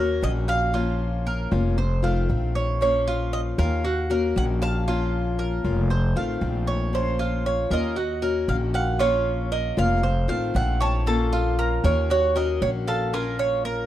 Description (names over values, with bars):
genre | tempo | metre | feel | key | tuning
latin | 116 BPM | 4/4 | straight | Bb minor | A4 = 441 Hz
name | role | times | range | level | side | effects
Cuban tres | melody | 0.0-13.9 s | A4 to A5 | -26 LUFS | right 3 dB | none
picked acoustic archtop guitar | accompaniment | 0.0-13.9 s | Eb3 to Gb4 | -28 LUFS | left 5 dB | none
Cuban tres | arpeggios | 0.0-13.9 s | F4 to F5 | -31 LUFS | right 3 dB | none
upright bass | bass | 0.0-13.8 s | F1 to Eb2 | -24 LUFS | equal | none
room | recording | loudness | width
small room ambience | dry, close 1970s-style studio recording | -21 LUFS | side -12 dB against mid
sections
0.0-13.9 A section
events
none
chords
0.0 Ebm7; 0.7 Bbm; 1.8 F7; 2.8 Bbm; 3.8 Ebm7; 4.9 Bbm; 5.9 F7; 6.9 Bbm; 8.0 Ebm7; 9.0 Bbm; 10.0 F7; 11.1 Bbm; 12.1 Ebm7; 13.1 Bbm